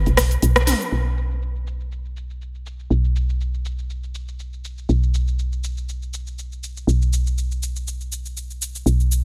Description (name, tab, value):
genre	afro house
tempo	121 BPM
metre	4/4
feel	swing 55% on 16ths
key	unclear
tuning	A4 = 440 Hz
part	woody FM bass	bass	0.1-9.2 s	B1	-24 LUFS	equal	none
part	deep house drum kit	drums	0.1-9.2 s	hi-hat, rim click, shaker, toms	-26 LUFS	equal	overdrive, low-pass filter on hats, low-pass filter on perc, low-pass filter on snare, low-pass filter on toms
room	light reverb, digital ambience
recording	none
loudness	-23 LUFS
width	mono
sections	0.9-9.2 A section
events	band accent 0.6; filter sweep on drum 0.9-9.2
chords	none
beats	0.43 | 0.92 1.42 1.92 2.41 | 2.91 3.40 3.90 4.39 | 4.89 5.39 5.88 6.38 | 6.87 7.37 7.87 8.36 | 8.86